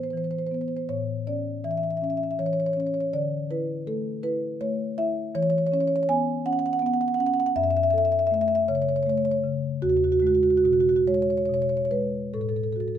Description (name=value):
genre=classical, contemporary piece for solo marimba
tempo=46-55 BPM (dotted quarters)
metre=6/8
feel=rubato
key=A major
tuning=A4 = 440 Hz
part: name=marimba with soft mallets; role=solo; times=0.0-13.0 s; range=E2 to G#5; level=-22 LUFS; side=equal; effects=none
room=little or no reverb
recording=close, detailed microphones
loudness=-22 LUFS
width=side -9 dB against mid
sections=0.0-13.0 A section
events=none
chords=0.0 Asus2; 0.9 A; 3.1 Dsus2; 5.4 Esus2; 7.6 F#m7; 9.8 E69; 12.3 A5